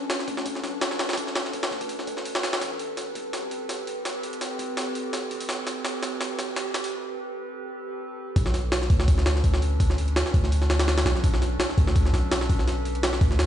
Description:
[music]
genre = drum and bass, jungle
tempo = 167 BPM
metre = 4/4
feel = swing 54% on 16ths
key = B phrygian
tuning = A4 = 435 Hz
[part]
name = warbly tape-like pad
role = sustained chords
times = 0.0-13.5 s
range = C4 to B4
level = -32 LUFS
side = equal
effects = chorus, built-in reverb
[part]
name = long sustained 808-style bass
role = bass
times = 0.0-13.5 s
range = F#1 to D2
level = -24 LUFS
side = equal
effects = high-pass filter
[part]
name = jungle sampler-style drum kit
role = drums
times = 0.1-13.5 s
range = hi-hat, kick drum, snare drum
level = -25 LUFS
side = equal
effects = overdrive, high-pass filter on hats, studio reverb, high-pass filter on snare, high-pass filter on kick
[sound]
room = light reverb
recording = played on a big sound system in a bare room, stone room reverb, nothing above 10.6 kHz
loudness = -23 LUFS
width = side -10 dB against mid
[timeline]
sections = 0.0-8.4 A section; 8.4-13.5 B section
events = build-up 0.0-8.4; drum fill 2.6-6.9; break 6.9-8.4; drop 8.4-13.5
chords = 0.0 Bm9; 2.6 Am9; 8.4 Bm9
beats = 0.10 0.46 0.82 | 1.18 1.53 1.89 2.25 | 2.61 2.97 3.33 3.69 | 4.05 4.41 4.77 5.13 | 5.49 5.85 6.21 6.56 | 6.92 7.28 7.64 8.00 | 8.36 8.72 9.08 9.44 | 9.80 10.16 10.52 10.88 | 11.23 11.59 11.95 12.31 | 12.67 13.03 13.39

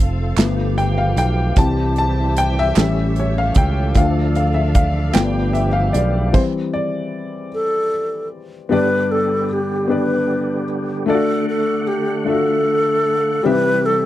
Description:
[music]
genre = slow gospel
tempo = 51 BPM (dotted quarters)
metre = 6/8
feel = straight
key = G major from 8.7 s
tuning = A4 = 441 Hz
[part]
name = warm upright piano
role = accompaniment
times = 0.0-14.1 s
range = G2 to A5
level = -20 LUFS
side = left 4 dB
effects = none
[part]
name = tonewheel organ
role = sustained chords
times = 0.0-14.1 s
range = D3 to F#5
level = -26 LUFS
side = right 4 dB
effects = slow rotary speaker, overdrive, chorus vibrato
[part]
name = warm studio string section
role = sustained chords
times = 0.0-6.3 s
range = E4 to F5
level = -32 LUFS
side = equal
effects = none
[part]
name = fingered electric bass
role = bass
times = 0.0-6.3 s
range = F1 to D2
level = -19 LUFS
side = right 1 dB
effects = none
[part]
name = natural country drum kit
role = drums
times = 0.4-6.5 s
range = crash cymbal, hi-hat, kick drum, snare drum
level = -16 LUFS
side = right 1 dB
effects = none
[part]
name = group handclap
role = percussion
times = 0.4-5.5 s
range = none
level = -25 LUFS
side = right 11 dB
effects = none
[part]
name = alto flute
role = melody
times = 7.5-14.1 s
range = G4 to B4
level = -18 LUFS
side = equal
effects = none
[sound]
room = little or no reverb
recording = dry, close 1970s-style studio recording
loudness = -15 LUFS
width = side -14 dB against mid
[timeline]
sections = 0.0-8.7 A section; 8.7-14.1 B section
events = upright piano solo 0.0-8.7; stop 6.3-8.7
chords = 0.4 G9; 1.6 C; 2.8 A7; 4.0 Dm; 5.2 G7; 6.3 C; 8.7 G; 11.1 D; 13.4 C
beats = 0.38 | 1.57 2.77 | 3.96 5.15 | 6.34 7.53 | 8.71 9.90 | 11.08 12.27 | 13.45

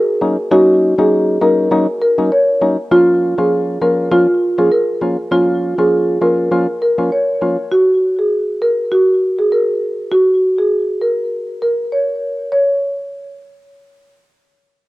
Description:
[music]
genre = dancehall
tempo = 100 BPM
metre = 4/4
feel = swing 56% on 16ths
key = Bb minor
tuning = A4 = 444 Hz
[part]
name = marimba with medium mallets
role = melody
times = 0.0-14.3 s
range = F4 to Db5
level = -14 LUFS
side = equal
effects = cassette tape, tape echo
[part]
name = percussive organ stab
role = accompaniment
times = 0.2-7.6 s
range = F3 to F4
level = -16 LUFS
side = left 1 dB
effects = chorus, cassette tape
[sound]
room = light reverb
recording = home recording on cassette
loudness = -12 LUFS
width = side -18 dB against mid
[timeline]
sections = 0.0-2.9 A section; 2.9-12.5 B section; 12.5-14.9 C section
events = none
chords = 0.0 Ebm7; 2.9 Bbm; 7.7 N.C.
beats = | 0.52 1.12 1.72 2.32 | 2.92 3.52 4.12 4.72 | 5.32 5.92 6.52 7.12 | 7.72 8.32 8.92 9.52 | 10.12 10.72 11.32 11.92 | 12.52 13.12 13.72

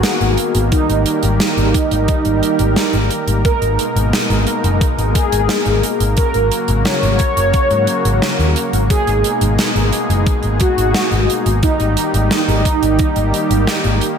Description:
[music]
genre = synthwave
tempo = 88 BPM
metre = 4/4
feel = straight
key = G# minor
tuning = A4 = 439 Hz
[part]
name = mellow synth brass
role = melody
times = 0.0-14.2 s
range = D#4 to C#5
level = -19 LUFS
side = right 2 dB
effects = chorus, cassette tape, ping-pong delay, shimmer reverb
[part]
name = soft supersaw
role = sustained chords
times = 0.0-14.2 s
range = B2 to A#4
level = -20 LUFS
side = equal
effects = sidechain pumping, shimmer reverb
[part]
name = gated 80s drum kit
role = drums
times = 0.0-14.2 s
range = hi-hat, snare drum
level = -20 LUFS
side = right 1 dB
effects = none
[part]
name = picked electric bass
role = bass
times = 0.2-14.0 s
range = F#1 to G#2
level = -17 LUFS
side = equal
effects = sidechain pumping
[part]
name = electronic kick drum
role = drums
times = 0.7-13.1 s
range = none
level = -17 LUFS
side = equal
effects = overdrive
[sound]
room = light reverb, studio reverb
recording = none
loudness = -13 LUFS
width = side -7 dB against mid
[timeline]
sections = 0.0-14.2 A section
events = none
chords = 0.0 G#madd9; 0.7 D#/G#; 3.4 G#madd9; 6.2 F#; 8.9 G#madd9; 11.6 D#/G#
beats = 0.04 | 0.72 1.40 2.08 2.77 | 3.45 4.13 4.81 5.49 | 6.18 6.86 7.54 8.22 | 8.90 9.59 10.27 10.95 | 11.63 12.31 12.99 13.68

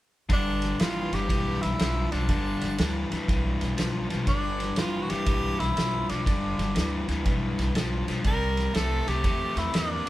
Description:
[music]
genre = electric blues shuffle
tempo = 121 BPM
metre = 4/4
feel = swing 66% on 8ths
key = G mixolydian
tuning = A4 = 440 Hz
[part]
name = bright tenor saxophone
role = melody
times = 0.3-10.1 s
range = D4 to Bb4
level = -30 LUFS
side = right 1 dB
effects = none
[part]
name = cranked stack guitar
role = riff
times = 0.3-10.1 s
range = G2 to Bb3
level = -30 LUFS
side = left 2 dB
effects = overdrive
[part]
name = upright bass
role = bass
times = 0.3-10.0 s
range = G1 to E2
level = -30 LUFS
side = equal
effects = none
[part]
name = vintage drum kit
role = drums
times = 0.3-10.1 s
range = kick drum, ride cymbal, snare drum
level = -29 LUFS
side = equal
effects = none
[sound]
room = moderate stone room reverb, RT60 1.4 s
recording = band playing live in one room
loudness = -24 LUFS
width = side -16 dB against mid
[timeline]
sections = 0.3-10.1 A section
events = none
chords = 0.3 G7; 8.3 C7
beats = | 0.30 0.79 1.29 1.79 | 2.29 2.78 3.28 3.78 | 4.28 4.78 5.27 5.77 | 6.27 6.76 7.26 7.76 | 8.26 8.75 9.25 9.74

